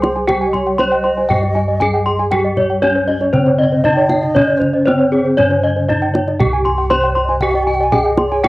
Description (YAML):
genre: Balinese gamelan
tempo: 118 BPM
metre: 4/4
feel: straight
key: C pelog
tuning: A4 = 441 Hz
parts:
  - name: gamelan-type bronze metallophone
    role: melody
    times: 0.0-8.5 s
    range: C4 to C5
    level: -18 LUFS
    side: equal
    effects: cassette tape, plate reverb
  - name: breathy bright low xiao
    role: second line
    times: 0.0-8.5 s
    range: C5 to Ab5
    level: -22 LUFS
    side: right 1 dB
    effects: none
  - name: gamelan-type bronze metallophone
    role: accompaniment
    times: 0.0-6.4 s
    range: C3 to G3-30c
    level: -25 LUFS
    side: equal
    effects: none
  - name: gamelan-type bronze metallophone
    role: arpeggios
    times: 0.0-8.5 s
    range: Ab4-20c to C6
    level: -18 LUFS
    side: left 2 dB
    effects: plate reverb
  - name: gamelan-type bronze metallophone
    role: arpeggios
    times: 0.0-8.4 s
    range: C5 to Ab5-20c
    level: -22 LUFS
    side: right 2 dB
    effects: none
  - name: gamelan-type bossed gongs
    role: bass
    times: 0.0-8.5 s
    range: C2 to G4-30c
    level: -20 LUFS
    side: equal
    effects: none
  - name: kendang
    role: percussion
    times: 0.0-8.5 s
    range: none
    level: -20 LUFS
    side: right 1 dB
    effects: none
room: wet booth ambience, RT60 0.2 s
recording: home recording on cassette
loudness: -12 LUFS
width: side -19 dB against mid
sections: 0.0-6.4 A section; 6.4-8.5 A section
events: none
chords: none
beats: | 0.28 0.79 1.30 1.81 | 2.32 2.83 3.34 3.85 | 4.36 4.87 5.38 5.89 | 6.40 6.91 7.42 7.93 | 8.44